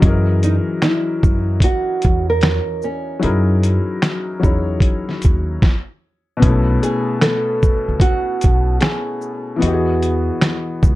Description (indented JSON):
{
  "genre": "lo-fi hip hop",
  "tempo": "75 BPM",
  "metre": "4/4",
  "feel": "swing 64% on 16ths",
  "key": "unclear",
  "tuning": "A4 = 441 Hz",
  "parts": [
    { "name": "felt-muted upright piano", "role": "accompaniment", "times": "0.0-11.0 s", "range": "B2 to D#5", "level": "-21 LUFS", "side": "left 3 dB", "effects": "cassette tape, low-pass filter" },
    { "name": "upright bass", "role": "bass", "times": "0.0-11.0 s", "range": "B1 to F#2", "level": "-19 LUFS", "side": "equal", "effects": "none" },
    { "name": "lo-fi sampler-style drum kit", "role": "drums", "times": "0.0-11.0 s", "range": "finger snaps, hi-hat, kick drum, shaker, snare drum", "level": "-15 LUFS", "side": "equal", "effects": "none" },
    { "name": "nylon-string guitar", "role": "melody", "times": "0.4-11.0 s", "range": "C#4 to A#4", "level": "-21 LUFS", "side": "right 2 dB", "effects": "low-pass filter, analog delay" }
  ],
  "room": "little or no reverb",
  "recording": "dark, warm production",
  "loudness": "-15 LUFS",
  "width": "side -17 dB against mid",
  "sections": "0.0-6.4 A section; 6.4-11.0 B section",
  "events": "stop 5.6-6.4",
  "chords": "0.0 F#13; 5.6 N.C.; 6.4 B7sus4; 9.6 Emaj9"
}